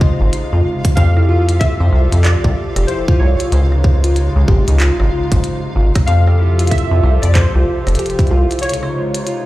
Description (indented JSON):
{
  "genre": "IDM",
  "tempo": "94 BPM",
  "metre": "4/4",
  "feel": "swing 62% on 16ths",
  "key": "F major",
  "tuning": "A4 = 440 Hz",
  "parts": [
    { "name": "warbly lo-fi synth keys", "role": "melody", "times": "0.0-9.5 s", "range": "C5 to F5", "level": "-24 LUFS", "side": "equal", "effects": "chorus, vintage 12-bit sampler grit, ping-pong delay" },
    { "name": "hollow soft pad", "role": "sustained chords", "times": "0.0-9.5 s", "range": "C3 to A4", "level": "-23 LUFS", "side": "left 1 dB", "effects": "chorus" },
    { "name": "harp-like synth pluck", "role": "arpeggios", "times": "0.0-9.4 s", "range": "Eb4 to C5", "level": "-22 LUFS", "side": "right 1 dB", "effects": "chorus, tape echo" },
    { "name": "electronic kick drum", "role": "drums", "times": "0.0-8.3 s", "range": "none", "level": "-13 LUFS", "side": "equal", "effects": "none" },
    { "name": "flickering grainy texture", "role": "texture", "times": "0.0-9.5 s", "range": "F4", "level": "-32 LUFS", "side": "right 1 dB", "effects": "built-in reverb" },
    { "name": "deep acid bass", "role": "bass", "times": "0.2-8.5 s", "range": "F1 to F2", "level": "-12 LUFS", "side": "equal", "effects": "tube saturation" },
    { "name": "glitchy drum kit", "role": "drums", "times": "0.3-9.4 s", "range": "handclaps, hi-hat, rim click", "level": "-25 LUFS", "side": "equal", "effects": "none" }
  ],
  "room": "little or no reverb",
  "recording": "played on a big sound system in a bare room, large studio reverb",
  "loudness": "-12 LUFS",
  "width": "side -17 dB against mid",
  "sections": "0.0-9.5 A section",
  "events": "break 8.6-9.5",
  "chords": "0.0 Dbmaj7; 1.0 Fmaj7; 3.5 Dbmaj7; 6.1 Fmaj7; 8.6 Dbmaj7"
}